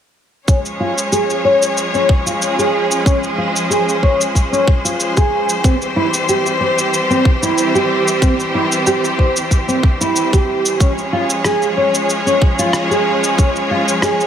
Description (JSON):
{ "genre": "organic downtempo", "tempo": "93 BPM", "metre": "4/4", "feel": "swing 54% on 16ths", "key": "unclear", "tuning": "A4 = 437 Hz", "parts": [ { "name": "rich studio string section", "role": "sustained chords", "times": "0.5-14.3 s", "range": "E3 to Db5", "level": "-18 LUFS", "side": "equal", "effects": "sidechain pumping, shimmer reverb" }, { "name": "nylon-string guitar", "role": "arpeggios", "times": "0.5-14.2 s", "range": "C4 to Db5", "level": "-17 LUFS", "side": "equal", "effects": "low-pass filter, digital delay, shimmer reverb" }, { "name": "electronic kick drum", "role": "drums", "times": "0.5-13.5 s", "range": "none", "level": "-13 LUFS", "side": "equal", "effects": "studio ambience" }, { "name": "electronic shaker and rim click", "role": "drums", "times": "0.5-14.3 s", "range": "none", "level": "-21 LUFS", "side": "equal", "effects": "studio ambience" } ], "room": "moderate lush hall reverb, RT60 2.8 s", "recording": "none", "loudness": "-13 LUFS", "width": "side -9 dB against mid", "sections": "0.5-14.3 A section", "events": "filter sweep on nylon-string guitar 0.5-14.3", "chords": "0.5 Db; 5.6 C; 10.8 Db" }